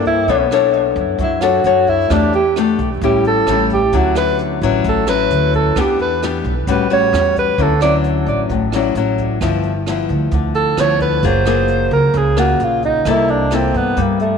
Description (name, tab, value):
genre	bossa nova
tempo	132 BPM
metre	4/4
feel	straight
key	D major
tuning	A4 = 440 Hz
part	breathy alto saxophone	melody	0.0-14.4 s	A3 to D5	-17 LUFS	right 3 dB	tape echo
part	nylon-string guitar	accompaniment	0.0-14.4 s	G2 to C#5	-17 LUFS	left 10 dB	none
part	upright bass	bass	0.0-14.4 s	F#1 to G2	-20 LUFS	right 2 dB	none
part	jazz brush drum kit	drums	0.0-14.3 s	hi-hat, kick drum, rim click	-26 LUFS	right 5 dB	none
room	moderate echo chamber reverb, RT60 2.2 s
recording	1960s-style stereo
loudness	-13 LUFS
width	side -6 dB against mid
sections	0.0-7.6 A section; 7.6-14.4 A section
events	alto saxophone solo 0.0-14.4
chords	0.3 Bm9; 2.1 Em7; 3.0 A7; 3.9 Dmaj9; 5.8 Em7; 6.7 A6; 7.6 Dmaj9; 9.4 G6; 11.2 F#maj9; 13.1 C6